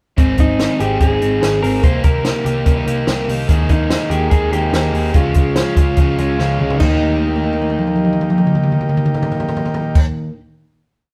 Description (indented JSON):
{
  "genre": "jangly indie pop",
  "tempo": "145 BPM",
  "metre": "4/4",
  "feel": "straight",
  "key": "Eb mixolydian",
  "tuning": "A4 = 440 Hz",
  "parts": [
    { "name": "crunchy overdriven guitar", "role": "accompaniment", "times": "0.2-10.4 s", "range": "Ab2 to Ab4", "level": "-25 LUFS", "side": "equal", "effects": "none" },
    { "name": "electric guitar through a small old amp", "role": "arpeggios", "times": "0.2-10.5 s", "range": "Eb3 to Ab4", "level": "-25 LUFS", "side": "equal", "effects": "none" },
    { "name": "vintage muted picked electric bass", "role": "bass", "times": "0.2-10.0 s", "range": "Ab1 to Eb2", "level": "-23 LUFS", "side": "equal", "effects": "none" },
    { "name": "compact cocktail drum kit", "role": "drums", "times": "0.2-10.1 s", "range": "crash cymbal, hi-hat, kick drum, snare drum, toms", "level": "-18 LUFS", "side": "equal", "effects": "none" },
    { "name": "electric guitar through a small old amp", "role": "melody", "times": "0.4-10.0 s", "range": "Eb4 to C5", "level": "-24 LUFS", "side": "equal", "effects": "none" },
    { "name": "combo organ", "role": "accompaniment", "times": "3.5-10.0 s", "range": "Ab3 to G4", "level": "-28 LUFS", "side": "equal", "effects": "none" }
  ],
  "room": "moderate stone room reverb, RT60 0.9 s",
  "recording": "band playing live in one room",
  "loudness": "-16 LUFS",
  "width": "mono",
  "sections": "0.2-6.8 pre-chorus; 6.8-10.1 final chord",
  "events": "drum fill 6.4-6.8, 7.0-10.0",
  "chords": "0.2 Ab; 1.8 Cm7; 3.5 Ebsus4; 5.2 Db; 6.8 Eb",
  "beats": "| 0.18 0.59 1.01 1.42 | 1.83 2.25 2.66 3.08 | 3.49 3.91 4.32 4.74 | 5.15 5.57 5.98 6.39 | 6.81 7.22 7.64 8.05 | 8.46 8.88 9.29 9.70"
}